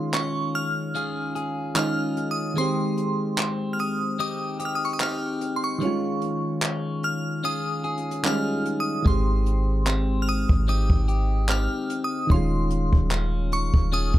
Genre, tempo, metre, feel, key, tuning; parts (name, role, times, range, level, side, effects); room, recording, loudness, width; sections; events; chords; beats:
contemporary R&B; 74 BPM; 4/4; swing 54% on 16ths; Ab major; A4 = 441 Hz
glassy synth bell; melody; 0.0-14.2 s; C6 to F6; -30 LUFS; right 1 dB; chorus, phaser, tape echo
soft electric-piano-like synth keys; accompaniment; 0.0-14.2 s; Eb3 to G4; -29 LUFS; right 2 dB; chorus
clean electric guitar; arpeggios; 0.0-14.2 s; Eb3 to Ab4; -30 LUFS; left 3 dB; phaser
jazz brush drum kit; drums; 0.1-14.2 s; handclaps, hi-hat, kick drum; -23 LUFS; equal
soft 808-style bass; bass; 9.1-14.2 s; Eb1 to Ab1; -24 LUFS; equal
little or no reverb; -22 LUFS; side -14 dB against mid
0.0-14.2 A section
break 0.0-9.1
0.0 Eb9sus4; 2.6 Abmaj7; 12.3 Eb9sus4
0.14 0.95 1.76 | 2.57 3.38 4.19 5.00 | 5.81 6.62 7.44 8.25 | 9.06 9.87 10.68 11.49 | 12.30 13.11 13.92